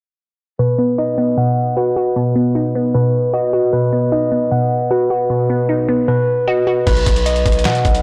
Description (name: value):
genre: hip hop, trap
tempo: 153 BPM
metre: 4/4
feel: half-time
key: unclear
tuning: A4 = 438 Hz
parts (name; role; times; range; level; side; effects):
- glassy wavetable pluck; accompaniment; 0.6-6.9 s; B2 to F#4; -19 LUFS; equal; chorus
- mellow tine electric piano; arpeggios; 0.6-8.0 s; B4 to F#5; -20 LUFS; equal; tape echo
- distorted 808-style bass; bass; 6.9-8.0 s; B1 to B2; -21 LUFS; equal; distortion
- boom bap sampler-style drum kit; drums; 6.9-8.0 s; crash cymbal, handclaps, hi-hat, kick drum, snare drum; -18 LUFS; equal; none
room: moderate lush hall reverb, RT60 2.2 s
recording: blown-out, overdriven recording, overdrive, low-pass filter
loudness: -16 LUFS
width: mono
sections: 0.6-6.9 A section; 6.9-8.0 B section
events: filter sweep 0.6-6.9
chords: 0.6 B